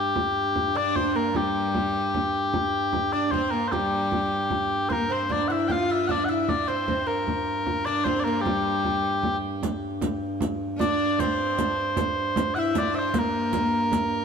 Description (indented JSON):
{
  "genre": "medieval dance",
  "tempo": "102 BPM (dotted quarters)",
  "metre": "6/8",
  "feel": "straight",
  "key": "G dorian",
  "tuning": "A4 = 440 Hz",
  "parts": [
    { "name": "mellow small bagpipes", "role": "melody", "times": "0.0-14.2 s", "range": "G4 to G5", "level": "-25 LUFS", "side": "left 1 dB", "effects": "none" },
    { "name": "pedal harmonium", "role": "drone", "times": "0.0-14.2 s", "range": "G2", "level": "-32 LUFS", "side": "equal", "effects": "none" },
    { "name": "frame drum", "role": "percussion", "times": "0.2-14.1 s", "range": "none", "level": "-32 LUFS", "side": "right 1 dB", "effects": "none" },
    { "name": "clear viola da gamba", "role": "second line", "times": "0.8-14.1 s", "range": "G3 to F4", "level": "-31 LUFS", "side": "left 2 dB", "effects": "none" },
    { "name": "lute", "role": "second line", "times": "0.8-14.1 s", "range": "G3 to F4", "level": "-33 LUFS", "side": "right 5 dB", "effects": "none" },
    { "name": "riq", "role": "percussion", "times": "9.6-14.1 s", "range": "none", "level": "-33 LUFS", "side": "right 6 dB", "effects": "none" }
  ],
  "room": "wet plate reverb, RT60 3.5 s",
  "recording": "heard from further back in the room",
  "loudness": "-22 LUFS",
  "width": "side -6 dB against mid",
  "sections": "0.2-9.6 A section; 9.6-14.2 A section",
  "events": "none",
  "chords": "none"
}